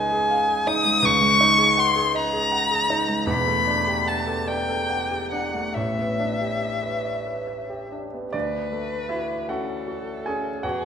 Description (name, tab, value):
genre	classical, impressionist duo for violin and grand piano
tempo	45-54 BPM (dotted quarters)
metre	6/8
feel	rubato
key	D lydian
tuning	A4 = 445 Hz
part	warm violin	melody	0.0-10.8 s	G#4 to D#6	-22 LUFS	left 2 dB	none
part	clear grand piano	accompaniment	0.0-10.8 s	E1 to G#5	-26 LUFS	right 2 dB	none
room	moderate recital hall reverb, RT60 1.4 s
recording	minimal, uncompressed stereo recording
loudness	-20 LUFS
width	side -7 dB against mid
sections	0.0-8.3 A section; 8.3-10.8 B section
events	none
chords	0.0 C#add9; 1.0 G#9sus4/C#; 3.3 Em11; 5.8 A9sus4; 8.3 Dmaj7